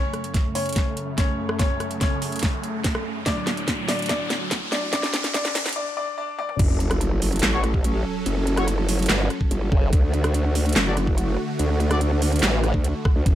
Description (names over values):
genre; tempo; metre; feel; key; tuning
heavy wobble dubstep; 144 BPM; 4/4; half-time; F# minor; A4 = 440 Hz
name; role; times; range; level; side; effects
clear grand piano; melody; 0.0-6.6 s; C#4 to D5; -29 LUFS; left 2 dB; ping-pong delay
supersaw chords; sustained chords; 0.0-13.3 s; D2 to A4; -29 LUFS; right 1 dB; sidechain pumping, low-pass filter
riser and sub drop; sound effects; 0.0-8.3 s; none; -31 LUFS; equal; none
dubstep drum kit; drums; 0.1-13.3 s; crash cymbal, handclaps, hi-hat, rim click, snare drum, toms; -26 LUFS; equal; none
electronic kick drum; drums; 0.3-13.3 s; none; -22 LUFS; equal; none
growl bass; bass; 6.6-13.3 s; F#1 to D2; -22 LUFS; equal; chorus, overdrive
clear brass ensemble; stabs; 7.5-12.0 s; F#4 to D5; -30 LUFS; left 2 dB; ping-pong delay
formant-sweep wobble bass; bass; 9.1-9.9, 12.4-12.7 s; F#1 to A1; -22 LUFS; equal; chorus, overdrive
room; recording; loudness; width
light reverb; high-pass filter; -20 LUFS; side -12 dB against mid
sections
0.0-6.6 A section; 6.6-13.3 B section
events
build-up 0.0-6.6; drum fill 0.0-5.8, 6.4; riser 0.0-5.8; filter sweep on supersaw synth 0.0-6.6; filter sweep 0.0-6.6; break 5.8-6.6; drop 6.6-13.3; impact 6.6-8.3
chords
0.0 F#m; 3.3 D; 6.6 F#m; 9.9 D